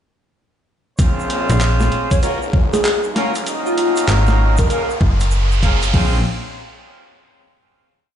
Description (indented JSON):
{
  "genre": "glitch hop",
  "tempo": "97 BPM",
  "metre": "4/4",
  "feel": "swing 64% on 16ths",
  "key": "Bb minor",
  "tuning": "A4 = 440 Hz",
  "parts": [
    { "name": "clear horn section", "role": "stabs", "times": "1.0-6.2 s", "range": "Bb3 to C5", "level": "-22 LUFS", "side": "equal", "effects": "sidechain pumping, ping-pong delay" },
    { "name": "phased detuned saw bass", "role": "bass", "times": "1.0-6.2 s", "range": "Eb1 to Db2", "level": "-23 LUFS", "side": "equal", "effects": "phaser, high-pass filter" },
    { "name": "boom bap sampler-style drum kit", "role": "drums", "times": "1.0-5.9 s", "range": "handclaps, hi-hat, snare drum", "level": "-23 LUFS", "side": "left 1 dB", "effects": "overdrive" },
    { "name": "dubstep drum kit", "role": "drums", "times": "1.0-6.1 s", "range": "crash cymbal, kick drum", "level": "-16 LUFS", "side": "equal", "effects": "overdrive" },
    { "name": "egg shaker", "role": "percussion", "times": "1.0-5.9 s", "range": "none", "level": "-34 LUFS", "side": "right 4 dB", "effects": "none" },
    { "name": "riser", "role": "sound effects", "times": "2.0-5.9 s", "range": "none", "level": "-27 LUFS", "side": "right 1 dB", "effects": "none" },
    { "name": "slap-like FM bass", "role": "bass", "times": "1.5-5.9 s", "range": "Gb1 to Bb1", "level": "-15 LUFS", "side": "equal", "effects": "none" },
    { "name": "plucky unison lead", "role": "melody", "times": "2.1-4.8 s", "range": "F4 to Db5", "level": "-22 LUFS", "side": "equal", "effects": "ping-pong delay" }
  ],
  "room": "light reverb",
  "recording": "played on a big sound system in a bare room, stone room reverb, nothing above 10.5 kHz",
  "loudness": "-14 LUFS",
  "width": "side -10 dB against mid",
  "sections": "1.0-5.9 build; 5.9-8.2 final chord",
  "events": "build-up 1.0-5.9; filter sweep on digital synth lead 1.0-5.9; riser 2.0-5.9",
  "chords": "1.0 Bbm7; 2.2 Ebm7; 3.5 Ab7sus4; 4.7 Gbmaj9; 5.9 Bbm7",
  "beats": "| 0.99 1.61 2.23 2.85 | 3.46 4.08 4.70 5.32 | 5.94"
}